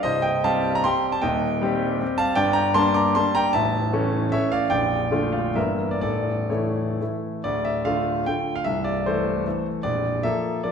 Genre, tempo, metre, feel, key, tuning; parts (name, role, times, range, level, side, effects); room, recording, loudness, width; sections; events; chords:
classical, romantic triple-time dance for piano with dotted rhythms; 113-169 BPM; 3/4; rubato; D minor; A4 = 440 Hz
warm concert grand piano; solo; 0.0-10.7 s; A0 to D6; -20 LUFS; equal
wet recital hall reverb, RT60 1.5 s; minimal, uncompressed stereo recording; -20 LUFS; side -6 dB against mid
0.0-7.4 A section; 7.4-10.7 B section
0.0 Cm; 1.2 Cm/Eb; 2.4 Gm; 3.5 A; 4.7 Bbmaj7; 5.6 Edim/G; 6.0 A; 7.4 Dm; 8.6 Am/C; 9.8 Bbmaj7